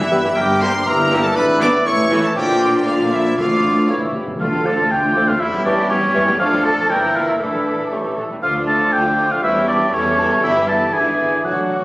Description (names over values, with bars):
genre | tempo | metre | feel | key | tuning
quick classical-period movement for symphony orchestra | 120 BPM | 2/4 | straight | D minor | A4 = 440 Hz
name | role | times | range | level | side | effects
clear studio violin section | melody | 0.0-11.8 s | B3 to D6 | -26 LUFS | left 1 dB | none
clear studio violin section | second line | 0.0-11.8 s | G3 to G4 | -29 LUFS | left 1 dB | none
rich studio viola section | accompaniment | 0.0-11.8 s | D3 to B3 | -28 LUFS | equal | none
warm trumpet | stabs | 0.0-11.8 s | C#4 to D5 | -23 LUFS | equal | none
warm studio cello section | bass | 0.0-11.8 s | G2 to Bb4 | -26 LUFS | right 1 dB | none
concert flute | second line | 0.1-11.8 s | B5 to E6 | -29 LUFS | equal | none
mellow clarinet | second line | 0.1-11.8 s | G4 to B4 | -29 LUFS | equal | none
warm oboe | second line | 0.1-11.8 s | Bb4 to A5 | -19 LUFS | equal | none
warm bassoon | accompaniment | 0.1-11.8 s | E3 to G3 | -24 LUFS | equal | none
mellow French horn section | sustained chords | 0.1-11.8 s | E3 to G4 | -24 LUFS | left 1 dB | none
rich studio double bass section | bass | 0.1-11.8 s | G1 to F2 | -28 LUFS | right 1 dB | none
timpani | percussion | 3.4-5.1, 11.4-11.8 s | A2 to D3 | -28 LUFS | equal | none
room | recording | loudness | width
wet concert hall reverb, RT60 2.0 s | recorded on a phone in the room, club reverb, compression | -14 LUFS | side -20 dB against mid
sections
0.0-4.4 A section; 4.4-11.8 B section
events
timpani fill 3.9-4.4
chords
0.4 Gm; 0.9 Edim/G; 1.4 E7/G#; 1.9 A; 2.4 Bb; 3.4 Dm/A; 3.9 A; 4.4 Dm; 5.4 C#dim/E; 6.4 Dm/F; 6.9 Edim/G; 7.4 Asus4; 7.9 A; 8.4 Dm; 9.4 C#dim/E; 10.4 Em/G; 10.9 E7/G#